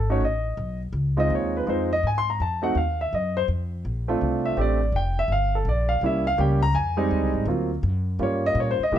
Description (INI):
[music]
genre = jazz piano trio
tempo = 165 BPM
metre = 4/4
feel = swing 64% on 8ths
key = F minor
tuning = A4 = 440 Hz
[part]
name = warm grand piano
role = melody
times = 0.0-9.0 s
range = F#3 to C6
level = -23 LUFS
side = right 1 dB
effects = none
[part]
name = upright bass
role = bass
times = 0.0-9.0 s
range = F1 to C3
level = -25 LUFS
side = left 1 dB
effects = none
[sound]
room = little or no reverb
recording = dark, warm production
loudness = -22 LUFS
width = side -10 dB against mid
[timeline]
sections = 0.0-9.0 A section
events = grand piano solo 0.0-9.0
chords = 0.0 B9; 0.9 Dbmaj7; 2.4 F7b9; 3.9 Bbmaj9; 5.3 Gm; 6.0 C7b9; 6.8 Fm7; 7.5 D7alt; 8.2 Gm7b5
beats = 0.22 0.58 | 0.95 1.31 1.67 2.04 | 2.40 2.76 3.12 3.49 | 3.85 4.21 4.58 4.94 | 5.30 5.66 6.03 6.39 | 6.75 7.11 7.48 7.84 | 8.20 8.57 8.93